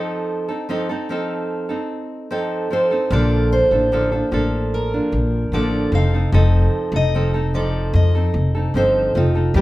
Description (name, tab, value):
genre	acoustic pop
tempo	75 BPM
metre	4/4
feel	straight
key	F mixolydian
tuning	A4 = 440 Hz
part	fingerpicked steel-string acoustic guitar	melody	0.0-9.6 s	F4 to F5	-22 LUFS	right 1 dB	none
part	nylon-string guitar	accompaniment	0.0-9.6 s	Bb2 to Bb4	-22 LUFS	right 1 dB	none
part	upright bass	bass	3.1-9.6 s	F1 to F2	-18 LUFS	left 1 dB	none
room	light reverb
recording	band playing live in one room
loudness	-16 LUFS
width	side -17 dB against mid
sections	0.0-9.6 A section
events	none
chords	0.0 F7; 3.1 Bbmaj7; 5.9 F7